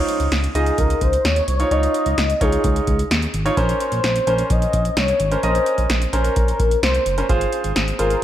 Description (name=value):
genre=synth-pop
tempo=129 BPM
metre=4/4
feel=straight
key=Db major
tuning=A4 = 440 Hz
part: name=clear concert grand piano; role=accompaniment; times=0.0-8.2 s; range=Db4 to Eb5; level=-23 LUFS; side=right 2 dB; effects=none
part: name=electro analog drum machine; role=drums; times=0.1-8.2 s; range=hi-hat, kick drum, snare drum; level=-22 LUFS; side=equal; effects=none
part: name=smooth synth bass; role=bass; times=0.2-8.2 s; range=Gb1 to Eb2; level=-22 LUFS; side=equal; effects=none
part: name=warm velvety synth lead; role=melody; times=0.6-8.2 s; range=Ab4 to Eb5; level=-22 LUFS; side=left 2 dB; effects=chorus, analog delay
room=wet plate reverb, RT60 2.1 s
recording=dreamy mix soaked in reverb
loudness=-16 LUFS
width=side -12 dB against mid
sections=0.0-8.2 A section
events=none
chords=0.0 Dbadd9; 3.6 Bbmadd9; 7.3 Ab6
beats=0.32 0.78 1.25 | 1.71 2.18 2.64 3.11 | 3.57 4.04 4.50 4.97 | 5.43 5.90 6.36 6.83 | 7.29 7.76 8.22